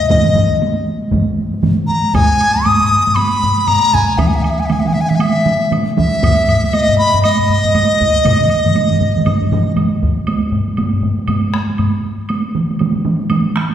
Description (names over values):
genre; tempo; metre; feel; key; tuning
japanese traditional, taiko drum ensemble; 118 BPM; 4/4; swing 60% on 16ths; Eb miyako bushi; A4 = 440 Hz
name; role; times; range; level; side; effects
mellow hollow dizi; melody; 0.0-9.7 s; Eb5 to Eb6; -14 LUFS; left 1 dB; none
solo taiko drums; percussion; 0.1-13.7 s; none; -19 LUFS; right 3 dB; none
solo taiko drums; percussion; 0.1-11.9 s; none; -19 LUFS; left 2 dB; none
taiko ensemble; percussion; 0.1-13.7 s; none; -18 LUFS; right 2 dB; none
taiko ensemble; percussion; 0.1-10.2 s; none; -19 LUFS; equal; none
woodblock; percussion; 2.1-13.7 s; none; -29 LUFS; right 2 dB; none
room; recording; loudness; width
wet scoring stage reverb, RT60 1.8 s; heard from further back in the room; -12 LUFS; side -10 dB against mid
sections
0.0-10.3 A section; 10.3-13.7 B section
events
none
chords
none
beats
| 0.09 0.60 1.12 1.63 | 2.14 2.65 3.16 3.67 | 4.18 4.70 5.21 5.71 | 6.22 6.73 7.24 7.75 | 8.25 8.76 9.26 9.77 | 10.27 10.78 11.28 11.79 | 12.29 12.79 13.29